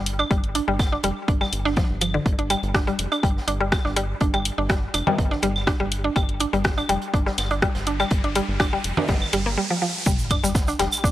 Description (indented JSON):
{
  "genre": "minimal techno",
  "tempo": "123 BPM",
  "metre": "4/4",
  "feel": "straight",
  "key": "unclear",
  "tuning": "A4 = 440 Hz",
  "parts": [
    { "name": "rubbery square bass", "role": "bass", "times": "0.0-11.1 s", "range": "F1 to G1", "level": "-28 LUFS", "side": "equal", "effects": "sidechain pumping" },
    { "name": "house drum kit", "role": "drums", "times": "0.1-10.9 s", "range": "hi-hat, rim click", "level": "-26 LUFS", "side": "left 1 dB", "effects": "overdrive" },
    { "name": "open jazz drum kit", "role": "drums", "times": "0.1-11.1 s", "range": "hi-hat, snare drum", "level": "-37 LUFS", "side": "right 1 dB", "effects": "high-pass filter on hats, high-pass filter on snare, high-pass filter on room" },
    { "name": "mallet-like synth pluck", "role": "riff", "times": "0.2-11.1 s", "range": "D3 to D4", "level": "-24 LUFS", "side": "equal", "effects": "chorus, phaser, sidechain pumping, analog delay" },
    { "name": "claves and congas", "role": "percussion", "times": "0.2-11.0 s", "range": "none", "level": "-28 LUFS", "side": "right 1 dB", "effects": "none" },
    { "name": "electronic kick drum", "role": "drums", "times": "0.3-11.1 s", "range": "none", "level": "-22 LUFS", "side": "equal", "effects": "overdrive" },
    { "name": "riser and sub drop", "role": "sound effects", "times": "7.0-11.1 s", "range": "none", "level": "-32 LUFS", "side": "right 1 dB", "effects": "none" },
    { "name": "tube shaker", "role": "percussion", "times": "10.1-11.1 s", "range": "none", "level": "-30 LUFS", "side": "right 3 dB", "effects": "none" }
  ],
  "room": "light reverb",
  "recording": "dry, gritty hardware recording",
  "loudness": "-20 LUFS",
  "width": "side -14 dB against mid",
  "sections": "0.0-10.1 A section; 10.1-11.1 B section",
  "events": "riser 7.0-10.1; drop 10.1-11.1; impact 10.1-11.1",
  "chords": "0.0 N.C.; 10.1 G5"
}